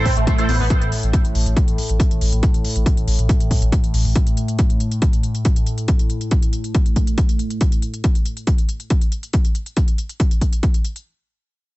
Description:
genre	driving peak-time techno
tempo	139 BPM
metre	4/4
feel	straight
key	A minor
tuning	A4 = 440 Hz
part	sync-sweep polysynth	stabs	0.0-0.5 s	E4 to C5	-25 LUFS	right 3 dB	ensemble chorus, cassette tape, sidechain pumping, digital delay
part	warm sub bass	bass	0.0-4.2 s	A1	-20 LUFS	equal	tube saturation, sidechain pumping, low-pass filter
part	analog drone	drone	0.0-7.7 s	A2	-25 LUFS	equal	chorus, sidechain pumping
part	overdriven synth lead	riff	0.1-0.7 s	A3 to C4	-25 LUFS	right 2 dB	phaser, tube saturation, lush chorus, sidechain pumping, dub echo
part	electronic hi-hat	drums	0.1-11.0 s	none	-32 LUFS	left 1 dB	overdrive, studio ambience
part	electronic kick drum	drums	0.1-10.7 s	none	-17 LUFS	equal	overdrive, studio ambience
room	digital ambience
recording	nothing above 7.9 kHz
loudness	-16 LUFS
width	side -19 dB against mid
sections	0.0-11.1 A section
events	none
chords	none

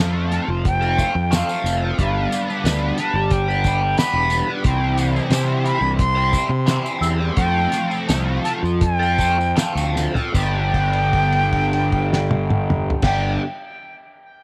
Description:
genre	psychedelic rock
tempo	76-90 BPM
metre	4/4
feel	straight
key	G mixolydian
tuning	A4 = 440 Hz
part	cranked stack guitar	riff	0.0-13.4 s	G2 to C5	-26 LUFS	equal	overdrive, flanger
part	fuzz fingered electric bass	bass	0.0-13.4 s	E1 to C3	-24 LUFS	equal	overdrive
part	bright concert flute	melody	0.3-13.4 s	F5 to E6	-26 LUFS	equal	tape echo
part	cloth-damped thuddy drum kit	drums	0.3-13.2 s	crash cymbal, hi-hat, kick drum, snare drum, toms	-24 LUFS	equal	none
part	tambourine	percussion	0.8-10.7 s	none	-37 LUFS	equal	none
room	light reverb, studio ambience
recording	none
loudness	-19 LUFS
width	mono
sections	0.0-10.3 A section; 10.3-13.5 B section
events	slowing down 4.7-10.3; drum fill 10.0-10.3; held note 10.3-13.0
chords	0.0 F; 2.0 G; 4.7 C; 7.4 Fadd9; 10.3 G

